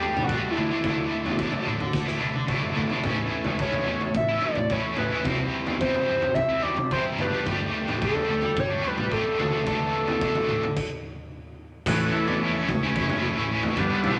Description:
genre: psychedelic rock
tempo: 109 BPM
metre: 4/4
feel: straight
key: A mixolydian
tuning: A4 = 440 Hz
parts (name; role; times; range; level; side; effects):
- overdriven synth lead; melody; 0.0-11.3 s; E4 to E5; -29 LUFS; equal; none
- combo organ; sustained chords; 0.0-14.2 s; E3 to B5; -36 LUFS; equal; none
- cranked stack guitar; riff; 0.0-14.2 s; G2 to A4; -30 LUFS; equal; overdrive, harmonic tremolo
- raw garage drum kit; drums; 0.0-14.2 s; crash cymbal, kick drum, snare drum, toms; -33 LUFS; equal; none
- fingered electric bass; bass; 0.2-14.2 s; F#1 to D3; -35 LUFS; equal; none
- tanpura; drone; 11.9-14.2 s; A2 to A3; -41 LUFS; equal; none
- congas; percussion; 12.7-13.9 s; none; -39 LUFS; equal; none
room: moderate studio ambience, RT60 0.5 s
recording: none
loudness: -25 LUFS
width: mono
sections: 0.0-11.9 A section; 11.9-14.2 B section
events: drum fill 1.9-3.1; stop 10.8-11.9; transistor combo organ solo 11.9-14.2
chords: 0.0 Gsus2; 0.6 Dsus2; 3.1 A; 5.3 Cmaj7; 7.2 Gsus2; 9.4 Dsus2; 11.9 A

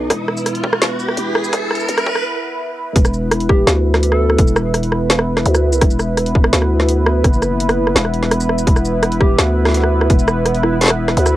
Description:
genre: half-time drum and bass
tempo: 168 BPM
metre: 4/4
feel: half-time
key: unclear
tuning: A4 = 440 Hz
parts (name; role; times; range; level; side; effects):
- dark analog pad; sustained chords; 0.0-11.4 s; B3 to B4; -20 LUFS; right 1 dB; chorus, sidechain pumping, cassette tape
- growling 808-style bass; bass; 0.0-11.4 s; E1 to D2; -18 LUFS; equal; none
- riser; sound effects; 0.0-2.2 s; none; -22 LUFS; right 1 dB; none
- drum and bass drum kit; drums; 0.1-11.3 s; hi-hat, rim click, shaker, snare drum; -17 LUFS; equal; overdrive, cassette tape
- electronic kick drum; drums; 0.1-10.2 s; none; -14 LUFS; equal; high-pass filter on kick, cassette tape
- soft struck synth lead; melody; 3.5-4.6, 9.2-10.8 s; E4 to A4; -22 LUFS; equal; chorus, cassette tape, tape echo
room: light reverb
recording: home recording on cassette, high-pass filter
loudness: -13 LUFS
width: side -14 dB against mid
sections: 0.0-3.0 A section; 3.0-11.4 B section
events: build-up 0.0-3.0; riser 0.0-2.2; break 2.2-3.0; drop 3.0-11.4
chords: 0.0 E5

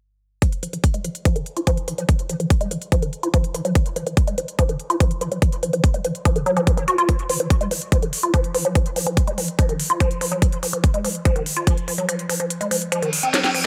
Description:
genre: psychedelic trance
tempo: 144 BPM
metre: 4/4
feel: straight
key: F phrygian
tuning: A4 = 440 Hz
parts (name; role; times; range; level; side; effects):
- woody wave-folded pluck; riff; 0.4-13.6 s; Eb3 to Gb4; -25 LUFS; equal; chorus, vintage 12-bit sampler grit, sidechain pumping, dub echo
- drum and bass drum kit; drums; 0.4-13.6 s; hi-hat, snare drum; -28 LUFS; equal; none
- electronic kick drum; drums; 0.4-11.8 s; none; -20 LUFS; equal; overdrive
- reverse cymbal; sound effects; 13.1-13.7 s; none; -28 LUFS; equal; none
room: light reverb, digital ambience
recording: none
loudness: -21 LUFS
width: mono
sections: 0.4-13.7 A section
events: filter sweep on synth arpeggio sound 0.4-13.7; kick drops out 12.1-13.7; reverse cymbal 13.1-13.7; drum fill 13.3-13.7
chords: none

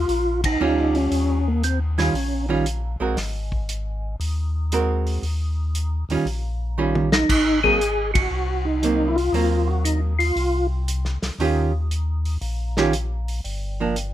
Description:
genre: soul jazz organ trio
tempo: 117 BPM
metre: 4/4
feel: swing 68% on 8ths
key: Eb mixolydian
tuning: A4 = 440 Hz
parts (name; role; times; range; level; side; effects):
- percussive tonewheel organ; melody; 0.0-2.5, 7.1-10.7 s; Bb3 to Ab4; -21 LUFS; equal; slow rotary speaker, chorus vibrato
- tonewheel organ; bass; 0.0-14.1 s; G1 to Eb2; -24 LUFS; left 1 dB; chorus vibrato, slow rotary speaker
- warm soul drum kit; drums; 0.1-14.1 s; crash cymbal, hi-hat, kick drum, ride cymbal, snare drum, toms; -27 LUFS; equal; none
- archtop guitar, miked and amplified; accompaniment; 0.6-14.0 s; Eb3 to Bb4; -23 LUFS; right 4 dB; none
room: little or no reverb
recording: minimal, uncompressed stereo recording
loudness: -20 LUFS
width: side -12 dB against mid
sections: 0.0-14.1 A section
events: band accent 0.3, 8.1; drum fill 6.8-7.3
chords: 0.0 Eb9; 3.2 Ab9; 5.2 Eb9; 7.3 Ab9; 11.4 Eb9; 13.4 Gm7

